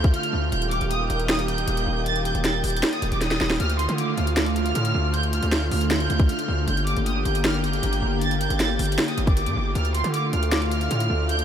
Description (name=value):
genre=hip hop, trap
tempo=156 BPM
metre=4/4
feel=half-time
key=D phrygian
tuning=A4 = 440 Hz
part: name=rich studio violin section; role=melody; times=0.0-11.4 s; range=C6 to A6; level=-28 LUFS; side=right 2 dB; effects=low-pass filter, tape echo
part: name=warm analog pad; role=sustained chords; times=0.0-11.4 s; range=D3 to G4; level=-27 LUFS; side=equal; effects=chorus, phaser
part: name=distorted 808-style bass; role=bass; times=0.0-11.4 s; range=Eb1 to D3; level=-25 LUFS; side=equal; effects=distortion
part: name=trap drum kit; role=drums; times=0.0-11.4 s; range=hi-hat, kick drum, snare drum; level=-26 LUFS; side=equal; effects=none
room=moderate huge ambient reverb, RT60 9.3 s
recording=dreamy mix soaked in reverb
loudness=-20 LUFS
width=side -9 dB against mid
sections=0.0-9.8 A section; 9.8-11.4 A section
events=drum fill 3.2-3.6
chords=0.0 Dm; 0.5 Eb; 3.6 Dm; 6.7 Gm; 9.8 Dm